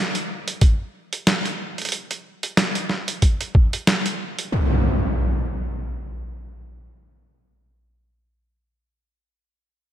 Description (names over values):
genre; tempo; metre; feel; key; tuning
glitch hop; 92 BPM; 4/4; swing 57% on 16ths; none; none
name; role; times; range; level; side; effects
boom bap sampler-style drum kit; drums; 0.1-4.5 s; hi-hat, snare drum; -22 LUFS; right 1 dB; none
electronic kick drum; drums; 0.6-3.7 s; none; -15 LUFS; equal; none
impact; sound effects; 4.5-8.4 s; none; -22 LUFS; equal; none
room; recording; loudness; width
moderate lush hall reverb, RT60 1.8 s; none; -20 LUFS; side -12 dB against mid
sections
0.0-4.5 A section; 4.5-7.1 B section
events
none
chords
none